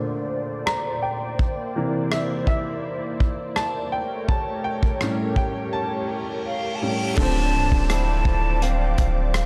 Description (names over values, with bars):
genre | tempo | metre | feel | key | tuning
contemporary R&B | 83 BPM | 4/4 | straight | D minor | A4 = 437 Hz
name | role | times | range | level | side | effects
clear grand piano | accompaniment | 0.0-9.5 s | A2 to Bb5 | -30 LUFS | equal | low-pass filter
lush unison pad | sustained chords | 0.0-9.5 s | Bb2 to D6 | -32 LUFS | equal | chorus, low-pass filter
downlifter and reverse cymbal | sound effects | 0.0-1.4, 6.0-9.5 s | none | -39 LUFS | equal | none
warm soul drum kit | drums | 0.7-9.5 s | crash cymbal, hi-hat, kick drum, rim click | -26 LUFS | equal | none
hollow concert flute | melody | 6.5-9.5 s | F5 to A5 | -30 LUFS | equal | none
picked swing-style acoustic guitar | arpeggios | 7.2-9.5 s | D3 to E4 | -33 LUFS | equal | none
long sustained 808-style bass | bass | 7.2-9.5 s | C1 to D1 | -24 LUFS | equal | none
room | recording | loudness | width
moderate plate reverb, RT60 2.6 s | dreamy mix soaked in reverb | -24 LUFS | mono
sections
0.0-7.2 A section; 7.2-9.5 B section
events
grand piano solo 0.0-7.2; filter sweep 0.0-7.2; reverse cymbal 6.0-7.2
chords
0.0 Bbmaj9; 1.4 C9; 3.9 A7b9; 7.2 Dm9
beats
0.67 | 1.39 2.12 2.84 3.56 | 4.28 5.01 5.73 6.45 | 7.17 7.90 8.62 9.34